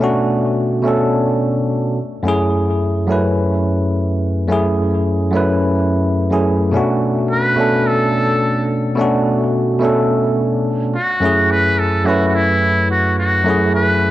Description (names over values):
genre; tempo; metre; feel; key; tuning
sunset chillout; 107 BPM; 4/4; straight; F# minor; A4 = 441 Hz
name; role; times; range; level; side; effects
bell-like tine electric piano; accompaniment; 0.0-14.1 s; F#2 to B4; -15 LUFS; equal; auto-pan, cassette tape, analog delay
trumpet with metal mute; melody; 7.3-14.1 s; E4 to B4; -17 LUFS; equal; cassette tape
room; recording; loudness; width
wet spring reverb, RT60 1.6 s, small room ambience; home recording on cassette; -14 LUFS; side -15 dB against mid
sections
0.0-14.1 A section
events
none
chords
0.0 Bm9; 2.0 F#m9; 6.7 Bm9; 10.9 F#m9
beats
| 0.01 0.57 1.13 1.69 | 2.25 2.81 3.38 3.94 | 4.50 5.06 5.62 6.18 | 6.74 7.30 7.86 8.42 | 8.98 9.54 10.10 10.66 | 11.23 11.79 12.35 12.91 | 13.47 14.03